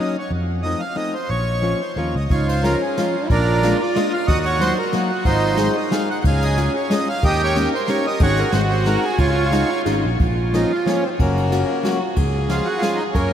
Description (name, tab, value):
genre	musette waltz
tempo	183 BPM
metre	3/4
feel	swing 54% on 8ths, rubato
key	Db major, Bb minor from 10.2 s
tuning	A4 = 439 Hz
part	accordion	melody	0.0-13.3 s	Db3 to Gb5	-22 LUFS	right 1 dB	none
part	picked plugged-in old ladder-braced acoustic guitar	accompaniment	0.0-13.0 s	F3 to Ab4	-25 LUFS	left 3 dB	none
part	sustaining fretless electric bass	bass	0.3-13.3 s	Gb1 to Gb2	-21 LUFS	equal	none
part	dark violin	second line	2.3-13.3 s	Db4 to Bb4	-24 LUFS	right 2 dB	none
part	jazz brush drum kit	drums	2.3-13.2 s	kick drum, ride cymbal, snare drum	-24 LUFS	equal	none
room	wet huge ambient reverb, RT60 7.4 s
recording	in a vast, echoing space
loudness	-17 LUFS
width	side -9 dB against mid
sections	0.0-2.3 A section; 2.3-10.2 B section; 10.2-13.3 A section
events	none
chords	0.3 F7; 1.3 Bbm; 2.3 Db; 3.3 Bb7; 4.3 Ebm; 5.2 Ab; 6.2 Db; 7.2 Eb7; 8.2 Ab7sus4; 8.5 Ab7; 9.2 Dbadd9; 10.2 Bbm; 11.2 Gb; 12.2 Db